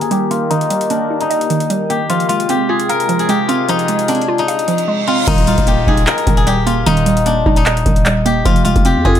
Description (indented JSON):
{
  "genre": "hip hop, trap",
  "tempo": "151 BPM",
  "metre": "4/4",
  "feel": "half-time",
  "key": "Eb major",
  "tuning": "A4 = 440 Hz",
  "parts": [
    { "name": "steel-string zither", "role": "melody", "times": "0.0-9.2 s", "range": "D4 to F5", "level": "-16 LUFS", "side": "left 4 dB", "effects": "low-pass filter" },
    { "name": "hollow square pluck", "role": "accompaniment", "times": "0.0-9.2 s", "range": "Eb3 to F5", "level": "-18 LUFS", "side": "right 6 dB", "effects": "chorus, low-pass filter" },
    { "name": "sweeping resonant pad", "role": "sustained chords", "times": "0.0-5.2 s", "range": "C3 to Bb4", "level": "-23 LUFS", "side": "left 1 dB", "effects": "chorus, low-pass filter" },
    { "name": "booming analog drum machine", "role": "drums", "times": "0.0-9.2 s", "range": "crash cymbal, handclaps, hi-hat, kick drum", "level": "-17 LUFS", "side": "equal", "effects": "none" },
    { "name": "reverse cymbal and downlifter", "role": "sound effects", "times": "4.7-8.5 s", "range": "none", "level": "-26 LUFS", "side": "right 3 dB", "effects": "none" },
    { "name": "growling 808-style bass", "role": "bass", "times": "5.3-9.2 s", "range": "Eb1 to F2", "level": "-17 LUFS", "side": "equal", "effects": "none" }
  ],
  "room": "light reverb, digital ambience",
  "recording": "none",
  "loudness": "-12 LUFS",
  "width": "side -10 dB against mid",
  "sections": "0.0-5.3 A section; 5.3-9.2 B section",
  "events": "filter sweep 0.0-5.3; reverse cymbal 4.7-5.3",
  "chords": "0.0 Eb; 2.1 Fm; 5.3 Eb; 8.5 Fm"
}